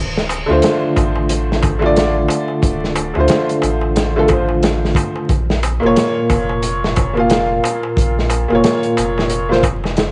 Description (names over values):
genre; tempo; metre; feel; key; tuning
trip hop; 90 BPM; 4/4; swing 59% on 16ths; D minor; A4 = 440 Hz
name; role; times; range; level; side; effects
soft dub sub bass; bass; 0.0-10.1 s; D1 to D2; -23 LUFS; equal; none
crunchy breakbeat drum kit; drums; 0.2-10.1 s; hi-hat, kick drum, snare drum; -21 LUFS; equal; cassette tape
darbuka; percussion; 0.3-10.1 s; none; -29 LUFS; equal; none
clear upright piano; accompaniment; 0.5-9.6 s; Bb2 to F5; -18 LUFS; equal; harmonic tremolo, cassette tape, tape echo
room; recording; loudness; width
small room ambience; home recording on cassette, vinyl crackle, nothing above 10.3 kHz; -16 LUFS; mono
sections
0.0-10.1 A section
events
none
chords
0.0 Dm7; 5.3 Bbm